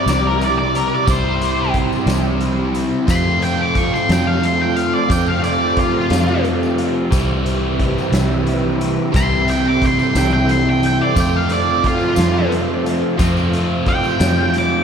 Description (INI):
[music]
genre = psychedelic rock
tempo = 59 BPM (dotted quarters)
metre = 6/8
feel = straight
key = unclear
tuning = A4 = 437 Hz
[part]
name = octave-fuzz lead guitar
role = melody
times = 0.0-14.8 s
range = F4 to D6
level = -20 LUFS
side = equal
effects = distortion, diffuse ambient delay
[part]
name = soft string machine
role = sustained chords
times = 0.0-14.8 s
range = C4 to E5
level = -25 LUFS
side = right 3 dB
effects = ensemble chorus
[part]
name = overdriven electric guitar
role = riff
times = 0.0-14.8 s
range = C3 to F4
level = -19 LUFS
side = equal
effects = phaser
[part]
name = fingered electric bass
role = bass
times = 0.1-14.8 s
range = C2 to F2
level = -21 LUFS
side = equal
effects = none
[part]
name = raw garage drum kit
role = drums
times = 0.1-14.7 s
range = hi-hat, kick drum, snare drum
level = -23 LUFS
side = equal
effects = none
[part]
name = tambourine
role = percussion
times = 0.1-14.6 s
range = none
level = -36 LUFS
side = left 6 dB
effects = none
[sound]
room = moderate lush hall reverb, RT60 2.1 s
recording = dreamy mix soaked in reverb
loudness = -14 LUFS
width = side -7 dB against mid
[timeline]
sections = 0.0-14.8 A section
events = lead electric guitar solo 0.0-14.8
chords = 0.0 C; 3.1 F; 7.1 Cmaj7; 11.2 Fmaj7